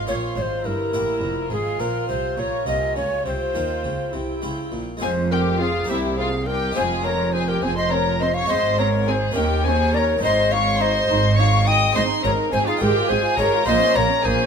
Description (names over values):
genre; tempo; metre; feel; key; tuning
classical, baroque-style concerto movement with solo episodes; 69 BPM (dotted quarters); 6/8; straight; F minor; A4 = 440 Hz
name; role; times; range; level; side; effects
dark chamber violin section; melody; 0.0-14.5 s; E5 to Eb6; -27 LUFS; left 3 dB; none
warm chamber violin section; second line; 0.0-14.5 s; E4 to Eb5; -25 LUFS; left 4 dB; none
dark chamber viola section; accompaniment; 0.0-14.5 s; Bb3 to Ab4; -28 LUFS; right 4 dB; none
harpsichord; accompaniment; 0.0-14.5 s; C2 to C5; -31 LUFS; right 1 dB; none
dark chamber cello section; bass; 0.0-14.3 s; C2 to Eb3; -26 LUFS; right 3 dB; none
dark chamber double bass section; bass; 0.0-14.3 s; F1 to Eb2; -27 LUFS; right 2 dB; none
hollow tenor recorder; melody; 0.1-14.5 s; G4 to G5; -24 LUFS; left 1 dB; none
room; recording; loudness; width
light reverb; close, detailed microphones; -18 LUFS; side -6 dB against mid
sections
0.0-5.0 A section; 5.0-14.5 B section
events
none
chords
0.0 Fm; 0.6 Edim/G; 1.5 Fm/Ab; 2.4 Bbm; 3.3 Csus4; 4.1 C; 5.0 Fm; 5.9 C5; 6.8 Fm; 8.5 Ab; 9.4 Eb5; 10.2 Ab; 12.8 Fm/Ab; 13.7 Bbm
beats
0.65 | 1.51 2.38 | 3.26 4.14 | 5.02 5.89 | 6.76 7.63 | 8.50 9.37 | 10.23 11.10 | 11.96 12.82 | 13.68